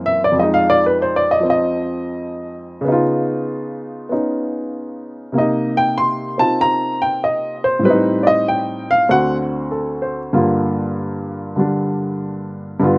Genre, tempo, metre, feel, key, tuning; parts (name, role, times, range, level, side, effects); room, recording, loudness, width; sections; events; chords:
solo jazz; 96 BPM; 4/4; swing 68% on 8ths; A4 = 441 Hz
warm upright piano; solo; 0.0-13.0 s; D2 to C6; -16 LUFS; equal
little or no reverb; recorded outdoors, with no room sound; -15 LUFS; side -30 dB against mid
0.0-13.0 A section
upright piano solo 0.0-13.0
0.4 Fm7; 2.8 Db9; 5.3 Cm7; 7.8 Am7b5; 9.1 D7; 10.3 Gm7